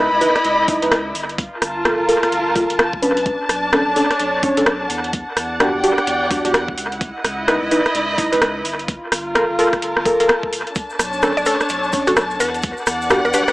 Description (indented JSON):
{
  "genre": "UK garage, two-step garage",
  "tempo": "128 BPM",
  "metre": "4/4",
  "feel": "swing 61% on 16ths",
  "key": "B minor",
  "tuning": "A4 = 437 Hz",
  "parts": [
    { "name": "deep mellow chord stab", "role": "stabs", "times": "0.0-13.4 s", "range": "C#4 to D#5", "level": "-19 LUFS", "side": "equal", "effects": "chorus, tape echo" },
    { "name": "saturated sub bass", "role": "bass", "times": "0.0-13.3 s", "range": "D1 to E2", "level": "-33 LUFS", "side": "equal", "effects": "none" },
    { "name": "dark studio string section", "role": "texture", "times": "0.0-13.5 s", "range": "D4 to B5", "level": "-20 LUFS", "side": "equal", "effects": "sidechain pumping" },
    { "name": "garage drum kit", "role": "drums", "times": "0.2-13.5 s", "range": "hi-hat, rim click", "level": "-20 LUFS", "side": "equal", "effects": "overdrive, dub echo" },
    { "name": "electronic kick drum", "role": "drums", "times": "0.7-12.7 s", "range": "none", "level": "-24 LUFS", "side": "equal", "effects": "overdrive" },
    { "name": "cabasa", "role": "percussion", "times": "10.8-13.5 s", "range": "none", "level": "-34 LUFS", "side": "right 1 dB", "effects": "none" },
    { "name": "mallet-like synth pluck", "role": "melody", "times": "11.4-13.5 s", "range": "F#4 to D5", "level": "-20 LUFS", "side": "left 1 dB", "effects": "chorus, dub echo" }
  ],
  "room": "moderate plate reverb, RT60 1.6 s",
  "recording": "echo-heavy mix, small speaker sound",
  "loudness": "-16 LUFS",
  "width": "side -18 dB against mid",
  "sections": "0.0-13.5 A section",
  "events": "none",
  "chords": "0.0 C#m9; 1.4 Gm9; 3.3 Bm9; 4.9 Em9; 6.8 C#m9; 8.9 Gm9; 10.8 Bm9; 12.4 Em9"
}